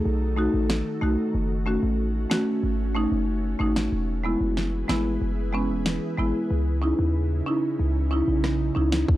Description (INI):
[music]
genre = dancehall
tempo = 93 BPM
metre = 4/4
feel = straight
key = C# minor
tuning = A4 = 440 Hz
[part]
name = ethereal airy pad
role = sustained chords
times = 0.0-9.2 s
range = C#3 to B4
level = -31 LUFS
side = right 1 dB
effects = ensemble chorus, built-in reverb, sidechain pumping
[part]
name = warm 808-style bass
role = bass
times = 0.1-9.2 s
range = E1 to D#2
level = -26 LUFS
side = equal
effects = transformer saturation
[part]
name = marimba with medium mallets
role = accompaniment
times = 0.4-8.9 s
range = G#3 to F#4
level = -26 LUFS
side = equal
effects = none
[part]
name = pop drum kit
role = drums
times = 0.7-9.2 s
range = kick drum, rim click, snare drum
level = -26 LUFS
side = equal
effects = none
[sound]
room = digital ambience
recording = dry, gritty hardware recording, cassette tape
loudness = -22 LUFS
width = side -15 dB against mid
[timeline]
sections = 0.0-9.2 A section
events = break 0.0-9.1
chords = 0.0 D#dim; 1.3 F#m; 3.9 E; 6.5 C#madd9